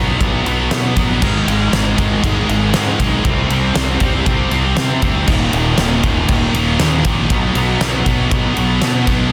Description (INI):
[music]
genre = quiet-loud alternative rock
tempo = 118 BPM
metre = 4/4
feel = straight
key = unclear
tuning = A4 = 440 Hz
[part]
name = fuzz guitar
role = riff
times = 0.0-9.3 s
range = Eb2 to C4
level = -23 LUFS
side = equal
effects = distortion
[part]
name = high-gain distorted guitar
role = riff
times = 0.0-9.3 s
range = Eb2 to C4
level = -27 LUFS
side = equal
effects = distortion
[part]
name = scooped high-gain guitar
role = riff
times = 0.0-9.3 s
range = Eb2 to C4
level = -22 LUFS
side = equal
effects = distortion
[part]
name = fuzz fingered electric bass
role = bass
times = 0.0-9.3 s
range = Eb1 to C3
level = -22 LUFS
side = equal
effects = overdrive
[part]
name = huge arena drum kit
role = drums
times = 0.2-9.2 s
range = crash cymbal, kick drum, ride cymbal, snare drum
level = -20 LUFS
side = equal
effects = none
[sound]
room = light reverb, studio ambience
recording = dense, heavily limited modern master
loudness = -15 LUFS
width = mono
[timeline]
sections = 0.0-9.3 A section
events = none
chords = 0.0 B5; 1.2 Ab5; 3.2 C5; 5.3 Eb5; 7.3 B5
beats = 0.20 0.71 | 1.22 1.72 2.23 2.74 | 3.25 3.75 4.26 4.77 | 5.27 5.78 6.29 6.79 | 7.30 7.81 8.31 8.82